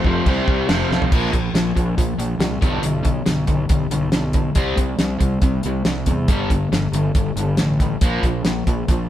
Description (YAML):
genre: classic rock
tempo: 139 BPM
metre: 4/4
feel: straight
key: unclear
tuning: A4 = 441 Hz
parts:
  - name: overdriven tonewheel organ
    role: sustained chords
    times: 0.0-1.1 s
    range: G3 to C5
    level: -28 LUFS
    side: right 1 dB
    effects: slow rotary speaker
  - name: overdriven semi-hollow guitar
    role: riff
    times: 0.0-9.1 s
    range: F2 to C4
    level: -21 LUFS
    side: left 1 dB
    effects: none
  - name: fuzz fingered electric bass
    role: bass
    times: 0.0-9.1 s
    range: F1 to E2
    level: -24 LUFS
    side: equal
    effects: overdrive
  - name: damped 70s drum kit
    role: drums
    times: 0.0-9.0 s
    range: crash cymbal, hi-hat, kick drum, snare drum, toms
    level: -20 LUFS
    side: equal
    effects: none
room: moderate studio reverb, RT60 0.8 s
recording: band playing live in one room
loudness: -17 LUFS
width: side -12 dB against mid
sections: 0.0-1.1 A section; 1.1-9.1 B section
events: drum fill 0.9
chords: 0.3 C; 0.7 F; 1.1 Bb5; 2.6 G/B; 4.6 C5; 6.3 G5; 8.0 Bb5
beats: 0.26 0.69 | 1.12 1.55 1.98 2.41 | 2.84 3.27 3.70 4.13 | 4.57 5.00 5.43 5.86 | 6.29 6.73 7.16 7.59 | 8.02 8.46 8.89